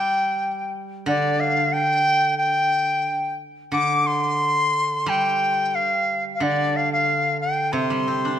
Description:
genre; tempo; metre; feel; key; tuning
chinese traditional, Chinese chamber ensemble; 90 BPM; 2/4; straight; unclear; A4 = 439 Hz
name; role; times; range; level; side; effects
reedy dizi; melody; 0.0-8.4 s; D5 to D6; -20 LUFS; left 1 dB; none
steel-string zither; accompaniment; 0.0-8.4 s; C3 to D4; -26 LUFS; right 2 dB; none
room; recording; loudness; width
moderate concert hall reverb, RT60 1.9 s; minimal, uncompressed stereo recording; -19 LUFS; side -10 dB against mid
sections
0.0-8.4 A section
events
none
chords
none

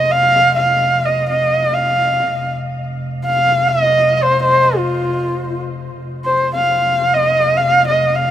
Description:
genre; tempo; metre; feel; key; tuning
mongolian traditional, Mongolian folk; free time; none; none; unclear; A4 = 440 Hz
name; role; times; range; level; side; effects
dark horsehead fiddle; melody; 0.0-8.3 s; F4 to F5; -14 LUFS; equal; none
dark double bass; drone; 0.0-8.3 s; F1; -23 LUFS; equal; none
room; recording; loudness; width
light reverb; minimal, uncompressed stereo recording; -13 LUFS; side -10 dB against mid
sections
0.0-6.0 A section; 6.0-8.3 A section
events
none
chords
none

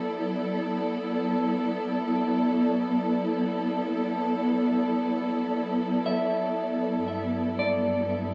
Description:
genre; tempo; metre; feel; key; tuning
ambient; free time; none; none; unclear; A4 = 438 Hz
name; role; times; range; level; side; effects
dark studio string section; sustained chords; 0.0-8.3 s; G2 to D5; -28 LUFS; equal; none
clean electric guitar; arpeggios; 0.0-8.3 s; F#3 to E5; -34 LUFS; equal; tape echo
room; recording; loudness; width
wet spring reverb, RT60 2.6 s; echo-heavy mix, small room ambience; -27 LUFS; mono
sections
0.0-8.3 A section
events
none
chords
0.0 Bm; 6.9 G

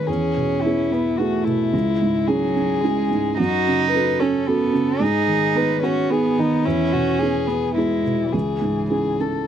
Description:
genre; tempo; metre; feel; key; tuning
neoclassical piano and strings; 109 BPM; 3/4; rubato; unclear; A4 = 440 Hz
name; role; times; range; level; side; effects
dark violin; melody; 0.0-9.5 s; D#4 to B4; -23 LUFS; left 9 dB; none
rich cello; second line; 0.0-9.5 s; E3 to D#4; -23 LUFS; right 5 dB; none
felt-muted upright piano; accompaniment; 0.0-9.5 s; C#2 to A4; -22 LUFS; right 3 dB; none
room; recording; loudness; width
little or no reverb; dry, close 1970s-style studio recording; -18 LUFS; side -9 dB against mid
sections
0.0-9.5 A section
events
none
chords
0.1 E; 1.7 C#m; 3.4 F#m; 5.0 G#m; 6.7 E; 8.3 C#m

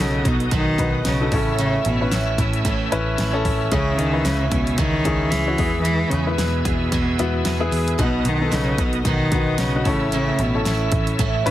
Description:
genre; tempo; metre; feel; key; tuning
piano-driven pop; 112 BPM; 4/4; swing 56% on 16ths; unclear; A4 = 440 Hz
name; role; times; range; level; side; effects
rich cello; melody; 0.0-11.5 s; A2 to E3; -23 LUFS; equal; none
clear baby grand piano; accompaniment; 0.0-11.5 s; A2 to B4; -25 LUFS; left 3 dB; none
bright tonewheel organ; sustained chords; 0.0-11.5 s; B4 to E6; -32 LUFS; equal; overdrive, chorus vibrato, fast rotary speaker
picked steel-string acoustic guitar; riff; 0.0-11.5 s; E2 to G#4; -28 LUFS; right 8 dB; none
vintage muted picked electric bass; bass; 0.0-11.5 s; A1 to E2; -24 LUFS; equal; none
pop drum kit; drums; 0.0-11.5 s; hi-hat, kick drum, snare drum; -25 LUFS; equal; none
room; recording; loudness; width
little or no reverb; heavily compressed radio sound; -18 LUFS; side -13 dB against mid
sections
0.0-11.5 A section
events
none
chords
0.0 B; 1.3 A; 3.7 C#m; 5.6 E; 8.0 B; 9.9 A

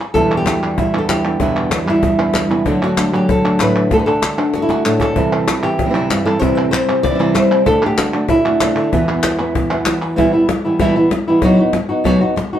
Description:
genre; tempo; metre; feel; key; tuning
flamenco; 192 BPM; 4/4; straight; E minor; A4 = 441 Hz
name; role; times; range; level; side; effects
palmas hand claps; percussion; 0.0-10.2 s; none; -22 LUFS; left 1 dB; none
flamenco guitar; melody; 0.1-12.6 s; E2 to D5; -15 LUFS; equal; none
flamenco guitar; stabs; 0.1-10.2 s; E2 to F#4; -20 LUFS; right 2 dB; none
cajon; percussion; 0.1-12.5 s; none; -22 LUFS; left 3 dB; none
room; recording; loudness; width
wet studio reverb, RT60 0.6 s; heard from further back in the room; -13 LUFS; side -10 dB against mid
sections
0.2-10.2 A section; 10.2-12.6 B section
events
drum fill 4.5-5.2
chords
0.2 Em7; 2.7 D; 5.2 C; 7.7 D; 8.9 Esus2; 10.2 Em; 11.4 B

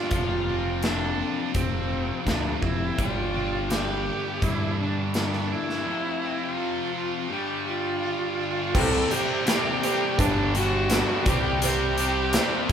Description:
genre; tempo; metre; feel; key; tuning
classic rock; 83 BPM; 4/4; straight; G mixolydian; A4 = 441 Hz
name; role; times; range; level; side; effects
rich viola; melody; 0.0-12.7 s; C4 to A4; -29 LUFS; right 2 dB; analog delay
distorted electric guitar; riff; 0.0-12.7 s; F2 to C4; -30 LUFS; left 6 dB; distortion
distorted electric guitar; riff; 0.0-12.7 s; G2 to B4; -32 LUFS; right 8 dB; distortion
growling picked electric bass; bass; 0.1-12.7 s; F1 to G2; -30 LUFS; equal; overdrive
big rock drum kit; drums; 0.1-12.7 s; crash cymbal, hi-hat, kick drum, snare drum; -28 LUFS; equal; none
warm upright piano; accompaniment; 8.7-12.7 s; G3 to A4; -35 LUFS; right 1 dB; none
raw garage guitar; riff; 8.7-12.7 s; G2 to C4; -30 LUFS; equal; overdrive
cowbell; percussion; 8.7-12.5 s; none; -37 LUFS; right 9 dB; none
room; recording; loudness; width
light reverb; band playing live in one room; -23 LUFS; side -8 dB against mid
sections
0.0-8.7 A section; 8.7-12.7 B section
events
none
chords
0.1 F; 3.0 G; 5.9 F; 7.3 G5; 8.7 C; 10.2 Gadd9; 11.3 C

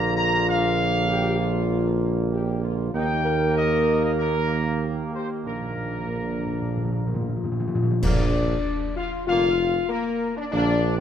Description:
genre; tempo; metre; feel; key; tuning
classical, ceremonial fanfare; 96 BPM; 4/4; straight; Bb major; A4 = 439 Hz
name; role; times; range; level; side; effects
mellow trumpet section; melody; 0.0-11.0 s; Bb4 to Bb5; -28 LUFS; left 1 dB; none
clear trombone section; sustained chords; 0.0-10.7 s; D3 to Bb3; -32 LUFS; right 5 dB; none
mellow French horn section; sustained chords; 0.0-11.0 s; Bb3 to Bb4; -26 LUFS; left 5 dB; none
mellow tuba; bass; 0.0-11.0 s; F1 to Eb2; -26 LUFS; right 5 dB; none
timpani; percussion; 5.5-8.0 s; Bb2; -27 LUFS; equal; none
clash cymbals and concert bass drum; percussion; 8.0-9.2 s; none; -28 LUFS; equal; none
room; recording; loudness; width
moderate scoring stage reverb, RT60 2.0 s; none; -21 LUFS; side -9 dB against mid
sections
0.0-8.0 A section; 8.0-11.0 A section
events
timpani fill 5.5-8.0; band accent 8.0-8.7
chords
0.0 Bb; 2.9 Eb; 5.5 Bb

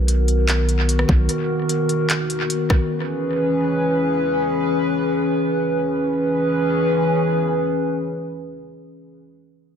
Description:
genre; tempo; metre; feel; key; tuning
hip hop, atmospheric cloud-rap; 149 BPM; 4/4; half-time; C# dorian; A4 = 440 Hz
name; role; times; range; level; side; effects
dark analog pad; sustained chords; 0.0-9.2 s; D#3 to B4; -19 LUFS; equal; lush chorus, sidechain pumping
warm 808-style bass; bass; 0.0-1.3 s; B1; -18 LUFS; equal; none
trap drum kit; drums; 0.1-2.8 s; handclaps, hi-hat, kick drum, rim click; -21 LUFS; equal; tape echo
room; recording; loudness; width
light reverb, digital ambience; echo-heavy mix; -18 LUFS; side -7 dB against mid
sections
0.0-6.1 A section; 6.1-9.3 B section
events
none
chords
0.0 Bmaj7; 2.9 C#m7

